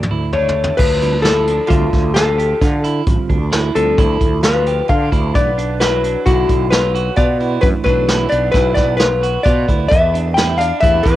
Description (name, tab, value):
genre	progressive instrumental, band music in an uneven meter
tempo	132 BPM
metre	5/4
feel	straight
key	D dorian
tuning	A4 = 441 Hz
part	vintage hollow-body jazz guitar	melody	0.0-11.2 s	F4 to G5	-16 LUFS	left 3 dB	cassette tape
part	clean electric guitar	arpeggios	0.0-11.2 s	D4 to E5	-24 LUFS	right 8 dB	none
part	fretless electric bass	bass	0.0-11.2 s	A1 to D3	-19 LUFS	equal	none
part	vintage brush drum kit	drums	0.0-11.2 s	crash cymbal, hi-hat, kick drum, snare drum, toms	-17 LUFS	equal	cassette tape
part	metal-body resonator slide guitar	second line	0.3-11.2 s	D3 to E4	-26 LUFS	right 6 dB	tape echo
part	mellow tonewheel organ	accompaniment	0.3-11.0 s	D3 to A5	-26 LUFS	right 6 dB	slow rotary speaker
room	light reverb, small room reverb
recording	home recording on cassette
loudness	-12 LUFS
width	side -14 dB against mid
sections	0.8-11.2 A section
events	drum fill 0.0-0.8; tonewheel organ fill 0.1-0.8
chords	0.0 D5; 0.8 Dm; 5.3 Bm; 9.9 Esus4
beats	0.32 | 0.78 1.24 1.70 2.15 2.61 | 3.06 3.52 3.98 4.43 4.89 | 5.35 5.80 6.26 6.72 7.17 | 7.63 8.09 8.54 9.00 9.45 | 9.91 10.37 10.82